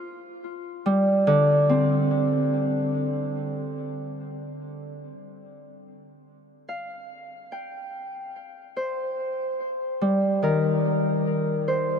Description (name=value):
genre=ambient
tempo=72 BPM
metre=3/4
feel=straight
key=unclear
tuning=A4 = 439 Hz
part: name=Celtic harp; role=solo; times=0.0-12.0 s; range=D3 to G5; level=-23 LUFS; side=equal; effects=ping-pong delay
room=wet huge ambient reverb, RT60 7.5 s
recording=none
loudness=-21 LUFS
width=side -7 dB against mid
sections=0.0-5.0 A section; 5.0-12.0 B section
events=none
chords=0.0 G7(no3) (rootless); 5.0 C5; 10.0 N.C.